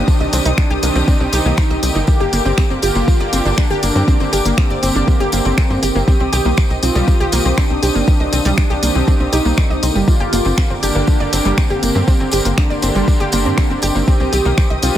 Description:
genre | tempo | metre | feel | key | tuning
melodic techno | 120 BPM | 4/4 | straight | unclear | A4 = 441 Hz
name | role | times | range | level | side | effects
soft supersaw | melody | 0.0-15.0 s | C4 to G4 | -22 LUFS | equal | digital delay
dark studio string section | sustained chords | 0.0-15.0 s | Bb4 to Eb6 | -27 LUFS | left 4 dB | sidechain pumping
brassy analog pad | stabs | 0.0-15.0 s | D3 to G4 | -23 LUFS | right 3 dB | chorus, sidechain pumping, ping-pong delay
tight sequencer bass | bass | 0.0-15.0 s | G1 to G2 | -18 LUFS | equal | sidechain pumping
electronic kick drum | drums | 0.1-14.7 s | none | -14 LUFS | equal | none
tambourine | percussion | 0.1-15.0 s | none | -27 LUFS | left 2 dB | none
analog pluck | arpeggios | 0.2-15.0 s | G3 to Eb5 | -21 LUFS | equal | chorus, sidechain pumping, ping-pong delay
deep house drum kit | drums | 0.3-14.9 s | finger snaps, hi-hat | -24 LUFS | equal | none
room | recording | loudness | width
digital ambience | none | -13 LUFS | side -11 dB against mid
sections
0.0-15.0 A section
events
none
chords
0.0 Gm; 6.1 Cm; 10.1 Gm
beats
| 0.08 0.58 1.08 1.58 | 2.08 2.58 3.08 3.58 | 4.08 4.58 5.08 5.58 | 6.08 6.58 7.08 7.58 | 8.08 8.58 9.08 9.58 | 10.08 10.58 11.08 11.58 | 12.08 12.58 13.08 13.58 | 14.08 14.58

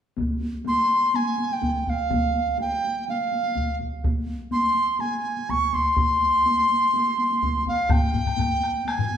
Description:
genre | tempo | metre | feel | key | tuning
japanese traditional, taiko drum ensemble | 124 BPM | 4/4 | straight | C miyako bushi | A4 = 442 Hz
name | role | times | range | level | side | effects
taiko ensemble | percussion | 0.2-9.2 s | none | -29 LUFS | left 1 dB | none
taiko ensemble | percussion | 0.2-8.5 s | none | -27 LUFS | equal | none
bright reedy large dizi | melody | 0.7-9.2 s | F5 to Db6 | -22 LUFS | equal | none
taiko ensemble | percussion | 7.9-9.1 s | none | -27 LUFS | left 2 dB | none
woodblock | percussion | 7.9-9.0 s | none | -36 LUFS | left 4 dB | none
room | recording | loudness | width
wet large studio reverb, RT60 1.3 s | band playing live in one room | -21 LUFS | side -9 dB against mid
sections
0.2-7.9 A section; 7.9-9.2 B section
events
none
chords
none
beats
| 0.17 0.66 1.14 1.62 | 2.11 2.59 3.08 3.56 | 4.04 4.53 5.01 5.49 | 5.97 6.46 6.94 7.42 | 7.91 8.39 8.87

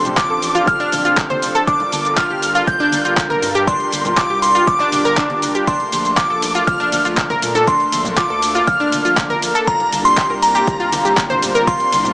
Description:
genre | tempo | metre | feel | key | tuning
progressive house | 120 BPM | 4/4 | straight | unclear | A4 = 441 Hz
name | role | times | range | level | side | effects
glassy synth bell | melody | 0.0-12.1 s | Bb5 to G6 | -17 LUFS | equal | chorus, sidechain pumping, tape echo
dark symphonic violin section | second line | 0.0-12.1 s | Bb5 to G6 | -24 LUFS | equal | sidechain pumping, tape echo
supersaw pad | sustained chords | 0.0-12.1 s | C3 to Bb4 | -25 LUFS | equal | sidechain pumping
saturated sub bass | bass | 0.0-12.1 s | F1 to Bb2 | -30 LUFS | equal | sidechain pumping
deep house drum kit | drums | 0.1-12.1 s | handclaps, hi-hat, ride cymbal, shaker | -22 LUFS | equal | sidechain pumping on hats, sidechain pumping on perc, sidechain pumping on cymbals
bongos and congas | percussion | 0.1-12.1 s | none | -30 LUFS | equal | sidechain pumping on perc
analog pluck | arpeggios | 0.2-11.7 s | D4 to C5 | -19 LUFS | equal | chorus, sidechain pumping, tape echo
electronic kick drum | drums | 0.2-11.8 s | none | -23 LUFS | equal | overdrive
room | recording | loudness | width
light reverb, digital ambience | small speaker sound | -13 LUFS | side -24 dB against mid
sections
0.0-12.1 A section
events
none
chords
0.0 F6; 1.7 Gm7; 5.7 Bbmaj7; 9.7 C7sus4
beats
0.17 0.67 1.17 | 1.67 2.17 2.67 3.17 | 3.67 4.17 4.67 5.17 | 5.67 6.17 6.67 7.17 | 7.67 8.17 8.67 9.17 | 9.67 10.17 10.67 11.17 | 11.67

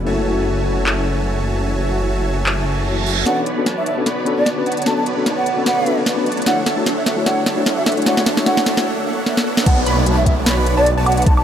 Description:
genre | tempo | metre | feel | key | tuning
future bass | 150 BPM | 4/4 | swing 55% on 16ths, half-time | B dorian | A4 = 441 Hz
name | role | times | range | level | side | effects
tine electric piano | accompaniment | 0.0-8.9 s | A3 to C#5 | -22 LUFS | left 4 dB | sidechain pumping, digital delay
shimmering ambient pad | sustained chords | 0.0-11.4 s | D3 to C#5 | -31 LUFS | right 1 dB | none
wide detuned saw bass | bass | 0.0-11.4 s | F#1 to D2 | -22 LUFS | equal | chorus, sidechain pumping, high-pass filter
supersaw chords | riff | 0.1-11.4 s | B3 to B5 | -22 LUFS | right 1 dB | lush chorus, sidechain pumping, low-pass filter
trap drum kit | drums | 0.9-11.4 s | crash cymbal, handclaps, hi-hat, snare drum, woodblock | -20 LUFS | equal | none
reverse cymbal, riser and downlifter | sound effects | 2.7-11.4 s | none | -27 LUFS | right 2 dB | none
breathy concert flute | melody | 3.3-11.4 s | D5 to A5 | -21 LUFS | right 2 dB | sidechain pumping, digital delay
wide unison pluck | arpeggios | 9.7-11.4 s | A5 to B5 | -27 LUFS | equal | sidechain pumping, digital delay
electronic kick drum | drums | 9.7-11.4 s | none | -14 LUFS | equal | overdrive
room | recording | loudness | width
moderate lush hall reverb, RT60 2.0 s | none | -15 LUFS | side -9 dB against mid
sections
0.0-3.3 A section; 3.3-9.7 B section; 9.7-11.4 C section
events
reverse cymbal 2.7-3.3; build-up 3.3-9.7; drum fill 3.3-8.9, 9.3-9.7; riser 3.3-9.7; filter sweep on ambient pad 3.3-9.7; break 8.9-9.7; drop 9.7-11.4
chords
0.1 F#m9; 3.3 Bm7; 6.5 Dmaj9; 9.7 Bm7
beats
| 0.06 0.46 0.86 1.26 | 1.66 2.06 2.46 2.86 | 3.26 3.66 4.06 4.46 | 4.86 5.26 5.66 6.06 | 6.46 6.86 7.26 7.66 | 8.06 8.46 8.86 9.26 | 9.66 10.06 10.46 10.86 | 11.26

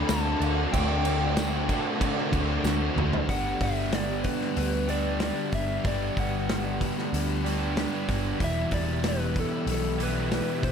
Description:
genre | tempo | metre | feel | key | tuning
rock, shoegaze and dream pop | 94 BPM | 4/4 | straight | G major | A4 = 440 Hz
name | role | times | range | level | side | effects
soft struck synth lead | melody | 0.0-10.7 s | A4 to A5 | -33 LUFS | left 3 dB | chorus, digital delay
string machine, cellos | sustained chords | 0.0-10.7 s | G4 to D6 | -38 LUFS | equal | phaser, ensemble chorus
overdriven electric guitar | riff | 0.0-10.7 s | E2 to G4 | -32 LUFS | right 12 dB | reverse reverb
thick fuzz guitar | riff | 0.0-10.7 s | E2 to D4 | -31 LUFS | left 9 dB | distortion, analog chorus
vintage muted picked electric bass | bass | 0.0-10.7 s | E1 to D2 | -30 LUFS | equal | none
loose indie drum kit | drums | 0.1-10.7 s | crash cymbal, hi-hat, kick drum, snare drum, toms | -31 LUFS | right 1 dB | none
tambourine | percussion | 0.1-2.8 s | none | -42 LUFS | right 7 dB | none
room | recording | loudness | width
light reverb, small room ambience | none | -24 LUFS | side -7 dB against mid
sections
0.0-3.3 A section; 3.3-10.7 B section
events
drum fill 2.7-3.3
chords
0.0 D7sus4; 3.3 Gmaj7; 8.4 Em7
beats
0.10 | 0.74 1.38 2.01 2.65 | 3.29 3.93 4.57 5.21 | 5.85 6.49 7.12 7.76 | 8.40 9.04 9.68 10.32

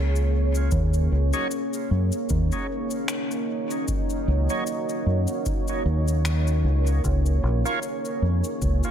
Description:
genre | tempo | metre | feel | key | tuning
ambient dub | 76 BPM | 4/4 | swing 55% on 16ths | Eb minor | A4 = 440 Hz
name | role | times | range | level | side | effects
deep dark ambient pad | sustained chords | 0.0-8.9 s | Bb3 to Db5 | -28 LUFS | right 1 dB | chorus, built-in reverb
deep dub fingered electric bass | bass | 0.0-8.8 s | Bb1 to Gb2 | -21 LUFS | equal | none
cabasa and finger snaps | drums | 0.2-8.9 s | none | -34 LUFS | left 4 dB | dub echo
electronic kick drum | drums | 0.7-8.8 s | none | -29 LUFS | equal | none
overdriven tonewheel organ | stabs | 1.3-7.8 s | Gb3 to Db5 | -32 LUFS | right 1 dB | slow rotary speaker, dub echo
room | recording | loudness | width
studio reverb | echo-heavy mix | -22 LUFS | side -9 dB against mid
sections
0.0-8.9 A section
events
none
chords
0.0 Db6; 0.7 Ebm7; 7.0 Db6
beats
| 0.72 1.51 2.30 3.09 | 3.88 4.67 5.46 6.25 | 7.04 7.83 8.62

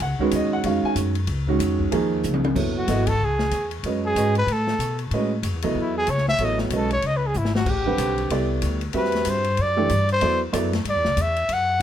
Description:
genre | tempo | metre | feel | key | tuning
modal jazz | 188 BPM | 4/4 | swing 61% on 8ths | unclear | A4 = 439 Hz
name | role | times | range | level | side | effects
warm upright piano | accompaniment | 0.0-10.7 s | D3 to G#5 | -24 LUFS | right 3 dB | none
upright bass | bass | 0.0-11.8 s | F#1 to B2 | -25 LUFS | left 1 dB | none
open jazz drum kit | drums | 0.0-11.6 s | crash cymbal, hi-hat, kick drum, ride cymbal, snare drum, toms | -30 LUFS | left 3 dB | none
mellow trumpet | melody | 2.8-11.8 s | E4 to F#5 | -23 LUFS | equal | plate reverb
room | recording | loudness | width
light reverb | none | -20 LUFS | side -10 dB against mid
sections
0.0-2.6 A section; 2.6-11.8 A section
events
drum fill 2.2-2.6, 7.3-7.7; trumpet solo 2.6-11.8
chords
0.0 C#sus4; 2.6 F#m9; 7.7 Am9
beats
| 0.01 0.33 0.65 0.97 | 1.29 1.61 1.93 2.24 | 2.56 2.88 3.20 3.52 | 3.84 4.16 4.48 4.80 | 5.12 5.44 5.75 6.07 | 6.39 6.71 7.03 7.35 | 7.67 7.99 8.30 8.62 | 8.94 9.26 9.58 9.90 | 10.21 10.53 10.85 11.17 | 11.49 11.81

